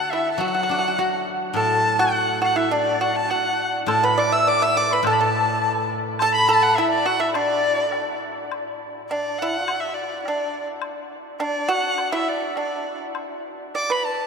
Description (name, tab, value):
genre	chinese traditional, Chinese chamber ensemble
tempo	104 BPM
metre	2/4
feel	rubato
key	D gong mode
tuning	A4 = 440 Hz
part	clear erhu	melody	0.0-14.3 s	D5 to E6	-24 LUFS	right 1 dB	none
part	dizi	second line	0.0-8.2 s	D5 to E6	-27 LUFS	left 5 dB	none
part	pipa	second line	0.0-14.3 s	D4 to E5	-23 LUFS	right 2 dB	none
part	steel-string zither	accompaniment	0.4-6.8 s	A2 to F#4	-29 LUFS	left 2 dB	none
part	woodblock	percussion	3.9-13.9 s	none	-37 LUFS	left 6 dB	none
room	wet cathedral reverb, RT60 6.1 s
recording	in a vast, echoing space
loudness	-19 LUFS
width	side -5 dB against mid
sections	0.0-8.5 A section; 8.5-14.3 B section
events	none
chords	none